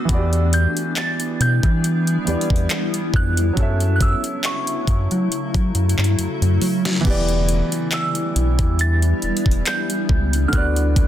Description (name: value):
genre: contemporary R&B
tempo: 69 BPM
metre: 4/4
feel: swing 54% on 16ths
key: E dorian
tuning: A4 = 440 Hz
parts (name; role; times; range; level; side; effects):
- glassy synth bell; melody; 0.0-11.1 s; C#6 to A6; -26 LUFS; right 2 dB; chorus, tape echo
- warm concert grand piano; accompaniment; 0.0-11.1 s; D3 to E5; -26 LUFS; right 2 dB; none
- granular cloud pad; sustained chords; 0.0-11.1 s; C#3 to E4; -26 LUFS; left 2 dB; built-in reverb
- rubbery square bass; bass; 0.1-11.1 s; E1 to F#3; -19 LUFS; equal; none
- smooth R&B drum kit; drums; 0.1-11.1 s; crash cymbal, handclaps, hi-hat, kick drum, snare drum; -21 LUFS; equal; none
room: digital ambience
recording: dense, heavily limited modern master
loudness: -17 LUFS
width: side -12 dB against mid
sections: 0.0-11.1 A section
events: drum fill 6.2-7.0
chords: 0.1 Em7; 3.6 F#m7; 7.0 Em7; 10.5 D6